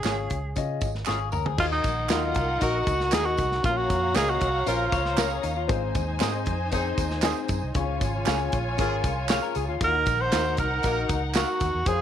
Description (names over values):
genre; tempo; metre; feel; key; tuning
uptempo 1960s-style soul; 117 BPM; 4/4; straight; Eb dorian; A4 = 440 Hz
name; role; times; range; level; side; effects
breathy tenor saxophone; melody; 0.0-5.4, 9.8-12.0 s; Eb4 to C5; -26 LUFS; right 1 dB; none
dark baby grand piano; accompaniment; 0.0-12.0 s; Ab2 to Db6; -32 LUFS; left 10 dB; none
electric guitar through a small old amp; stabs; 0.0-11.5 s; Db4 to F5; -33 LUFS; right 11 dB; none
vintage muted fingered electric bass; bass; 0.0-12.0 s; Ab1 to Db3; -30 LUFS; right 1 dB; none
handclaps and tambourine; percussion; 0.0-12.0 s; none; -37 LUFS; right 13 dB; none
natural country drum kit; drums; 0.1-12.0 s; crash cymbal, hi-hat, kick drum, snare drum, toms; -29 LUFS; equal; none
electric guitar through a small old amp; riff; 1.1-1.7, 4.9-5.8, 9.3-9.9 s; Eb4 to Db5; -32 LUFS; left 10 dB; none
muted studio string section; second line; 1.6-12.0 s; C4 to Bb5; -32 LUFS; left 1 dB; tape echo
mellow horn section; second line; 2.6-11.0 s; Bb3 to Bb4; -32 LUFS; right 2 dB; none
room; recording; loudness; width
light reverb, studio reverb; 1960s-style stereo with parts hard left and right; -23 LUFS; side -9 dB against mid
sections
0.0-1.6 A section; 1.6-12.0 B section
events
drum fill 1.1-1.6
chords
0.0 Db; 1.6 Ebm; 3.6 Bbm; 5.7 Ab; 7.8 Db; 9.8 Ebmadd9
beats
0.04 0.56 1.07 | 1.59 2.10 2.61 3.13 | 3.64 4.15 4.67 5.18 | 5.70 6.21 6.72 7.24 | 7.75 8.27 8.78 9.30 | 9.81 10.33 10.84 11.36 | 11.87